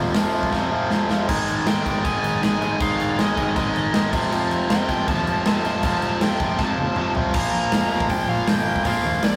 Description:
punk rock; 158 BPM; 4/4; straight; A4 = 440 Hz
distorted electric guitar; riff; 0.0-9.4 s; F2 to Bb3; -28 LUFS; equal; overdrive
overdriven electric guitar; riff; 0.0-9.4 s; F2 to Bb3; -27 LUFS; equal
picked electric bass; bass; 0.0-9.4 s; F1 to Eb2; -34 LUFS; equal
big rock drum kit; drums; 0.1-9.3 s; crash cymbal, hi-hat, kick drum, snare drum, toms; -26 LUFS; equal
biting lead guitar; melody; 1.7-9.4 s; D5 to Bb5; -30 LUFS; equal; overdrive
light reverb; rough rehearsal-room recording; -21 LUFS; mono
0.0-1.3 A section; 1.3-7.3 B section; 7.3-9.4 C section
drum fill 0.5-1.3, 6.6-7.3
0.0 F5; 1.3 Ab5; 4.1 F; 7.3 Bb5

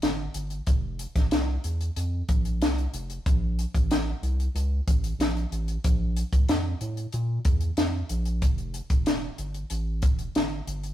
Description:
indie pop, bedroom pop; 93 BPM; 4/4; straight; F major; A4 = 440 Hz
round analog bass; bass; 0.0-10.9 s; E1 to Bb2; -28 LUFS; equal
compact cocktail drum kit; drums; 0.0-10.9 s; hi-hat, kick drum, snare drum; -25 LUFS; equal
light reverb; rough rehearsal-room recording; -24 LUFS; side -12 dB against mid
0.0-10.9 A section

